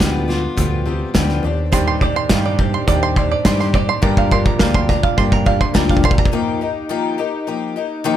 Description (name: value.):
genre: indie folk with a building arrangement.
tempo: 105 BPM.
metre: 4/4.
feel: straight.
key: Eb major.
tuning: A4 = 440 Hz.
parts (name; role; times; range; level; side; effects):
fingerpicked steel-string acoustic guitar; accompaniment; 0.0-4.0 s; Eb2 to G4; -27 LUFS; left 1 dB; none.
picked twelve-string acoustic guitar; accompaniment; 0.0-8.2 s; G2 to G4; -21 LUFS; left 6 dB; none.
hollow-body short-scale picked electric bass; bass; 0.0-6.2 s; D2 to G2; -21 LUFS; equal; none.
loose indie drum kit; drums; 0.0-6.4 s; hi-hat, kick drum, snare drum; -17 LUFS; equal; none.
bright upright piano; accompaniment; 1.7-6.3 s; G1 to F5; -25 LUFS; right 7 dB; none.
bluegrass banjo; arpeggios; 1.7-6.3 s; D5 to C6; -22 LUFS; right 8 dB; none.
room: light reverb.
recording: none.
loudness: -14 LUFS.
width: side -11 dB against mid.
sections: 0.0-6.3 A section; 6.3-8.2 B section.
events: build-up 0.0-6.3; drum fill 0.0-6.3.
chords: 0.0 G7/D; 1.4 Cmadd9/Eb; 4.0 Gm7; 6.3 Ebadd9.